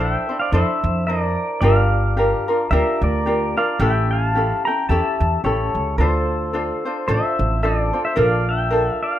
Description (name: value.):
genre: Hawaiian.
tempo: 110 BPM.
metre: 4/4.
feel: swing 57% on 8ths.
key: D minor.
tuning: A4 = 441 Hz.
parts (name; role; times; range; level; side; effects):
pedal steel guitar; melody; 0.0-9.2 s; A4 to Bb5; -22 LUFS; equal; plate reverb.
ukulele; accompaniment; 0.0-9.2 s; C#4 to C5; -22 LUFS; left 1 dB; plate reverb.
upright bass; bass; 0.0-8.9 s; G1 to F2; -20 LUFS; right 1 dB; none.
room: moderate small room reverb, RT60 0.6 s.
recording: rough home demo mix.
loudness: -17 LUFS.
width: side -12 dB against mid.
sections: 0.0-9.2 A section.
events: none.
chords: 0.0 Bbmaj9#11; 1.6 Gm7; 3.8 A7; 6.0 Dm7; 8.2 Bbmaj7.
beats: 0.53 1.07 | 1.62 2.17 2.71 3.26 | 3.81 4.35 4.90 5.44 | 5.99 6.54 7.08 7.63 | 8.18 8.72.